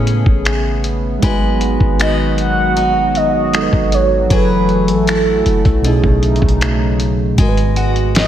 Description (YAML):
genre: contemporary R&B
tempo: 78 BPM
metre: 4/4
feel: straight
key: unclear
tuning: A4 = 439 Hz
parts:
  - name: mellow tine electric piano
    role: accompaniment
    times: 0.0-8.3 s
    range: G#2 to G#5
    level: -20 LUFS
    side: right 3 dB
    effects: medium stereo tremolo
  - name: chorused pulse-width pad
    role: sustained chords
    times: 0.0-8.3 s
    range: C#3 to G#4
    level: -20 LUFS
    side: left 1 dB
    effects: sidechain pumping
  - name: picked steel-string acoustic guitar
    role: arpeggios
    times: 0.0-8.3 s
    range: B2 to B4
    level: -23 LUFS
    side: left 5 dB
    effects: analog delay
  - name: warm 808-style bass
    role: bass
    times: 0.0-8.3 s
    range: F#1 to A2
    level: -18 LUFS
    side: equal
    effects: none
  - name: dusty soul sampler-style drum kit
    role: drums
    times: 0.1-8.3 s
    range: finger snaps, hi-hat, kick drum, snare drum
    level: -17 LUFS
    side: equal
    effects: vintage 12-bit sampler grit
  - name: mellow horn-like synth lead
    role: melody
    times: 2.0-8.3 s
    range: A4 to F#5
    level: -17 LUFS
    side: right 2 dB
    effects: chorus, phaser, analog delay
  - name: mallet-like synth pluck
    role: texture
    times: 7.8-8.3 s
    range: F#5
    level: -26 LUFS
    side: right 5 dB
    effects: chorus, analog delay
room: moderate plate reverb, RT60 1.7 s, digital ambience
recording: dreamy mix soaked in reverb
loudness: -12 LUFS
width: side -11 dB against mid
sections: 0.0-7.4 A section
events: none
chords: 0.0 Amaj9; 1.2 G#m7; 4.3 F#m9; 5.8 B13; 7.4 G#m7